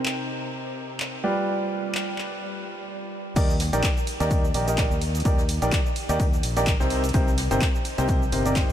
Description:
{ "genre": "piano house", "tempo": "127 BPM", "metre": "4/4", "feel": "swing 56% on 16ths", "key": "Eb major", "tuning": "A4 = 440 Hz", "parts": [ { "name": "clear upright piano", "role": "riff", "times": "0.0-8.7 s", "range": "C3 to Eb5", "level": "-26 LUFS", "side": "equal", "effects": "vintage 12-bit sampler grit, sidechain pumping, tape echo" }, { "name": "punchy analog drum machine", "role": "drums", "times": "0.1-8.7 s", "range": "crash cymbal, handclaps, hi-hat, ride cymbal, shaker", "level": "-31 LUFS", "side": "equal", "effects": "none" }, { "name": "modern bright fingered electric bass", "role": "bass", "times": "3.4-8.7 s", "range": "G1 to Eb2", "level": "-27 LUFS", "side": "equal", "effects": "sidechain pumping" }, { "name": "electronic kick drum", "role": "drums", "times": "3.4-8.7 s", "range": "none", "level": "-23 LUFS", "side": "equal", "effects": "none" }, { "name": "shaker and snare drum", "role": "drums", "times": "3.4-8.7 s", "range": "none", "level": "-39 LUFS", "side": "left 2 dB", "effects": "none" } ], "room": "light reverb, small room ambience", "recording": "none", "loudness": "-22 LUFS", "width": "side -11 dB against mid", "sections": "0.0-3.4 A section; 3.4-8.7 B section", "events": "drop 3.4-8.7", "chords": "0.0 Cm7; 1.2 G7; 3.4 Ebmaj7; 6.9 Cm7" }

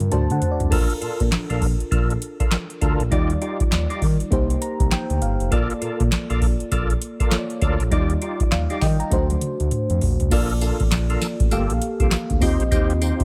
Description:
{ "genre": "R&B, new jack swing", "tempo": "100 BPM", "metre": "4/4", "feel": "swing 61% on 16ths", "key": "unclear", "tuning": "A4 = 439 Hz", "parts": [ { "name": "mellow FM electric piano", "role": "accompaniment", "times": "0.0-13.2 s", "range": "G3 to Bb5", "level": "-28 LUFS", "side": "equal", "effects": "chorus" }, { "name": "smooth gliding synth bass", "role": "bass", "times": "0.0-13.2 s", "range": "F1 to Eb3", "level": "-25 LUFS", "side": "equal", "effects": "none" }, { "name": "booming analog drum machine", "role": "drums", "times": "0.0-13.2 s", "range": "crash cymbal, handclaps, hi-hat, kick drum, snare drum, tambourine, toms", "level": "-24 LUFS", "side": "equal", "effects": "none" }, { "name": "percussive tonewheel organ", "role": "stabs", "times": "0.7-13.2 s", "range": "Bb3 to D5", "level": "-31 LUFS", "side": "equal", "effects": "overdrive, chorus vibrato, slow rotary speaker" } ], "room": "little or no reverb", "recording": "none", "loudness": "-21 LUFS", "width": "mono", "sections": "0.7-10.3 A section; 10.3-13.2 B section", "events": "drum fill 0.0-0.7, 9.1-10.3; FM electric piano fill 0.0-0.7, 4.3-5.5", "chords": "0.1 D7; 0.7 Bbmaj7; 3.1 Ebmaj9; 4.3 Cm7; 5.5 Bbmaj7; 7.9 Ebmaj9; 9.1 D7; 10.3 Bbmaj7; 11.5 Gm9; 12.4 Eb69" }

